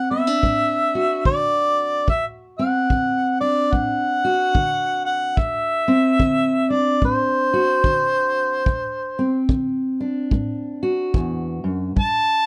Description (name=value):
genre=acoustic country blues, solo or duo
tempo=73 BPM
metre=4/4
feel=swing 61% on 8ths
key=D mixolydian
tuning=A4 = 440 Hz
part: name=mellow harmonica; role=melody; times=0.0-12.5 s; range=C5 to A5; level=-22 LUFS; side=equal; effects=none
part: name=fingerpicked steel-string acoustic guitar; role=accompaniment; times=0.0-12.5 s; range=D2 to F#4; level=-25 LUFS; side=equal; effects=none
part: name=kick drum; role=drums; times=0.4-12.2 s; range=none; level=-25 LUFS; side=equal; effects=none
room=light reverb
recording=dark, warm production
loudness=-20 LUFS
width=mono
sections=0.0-12.5 A section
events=none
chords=0.0 D7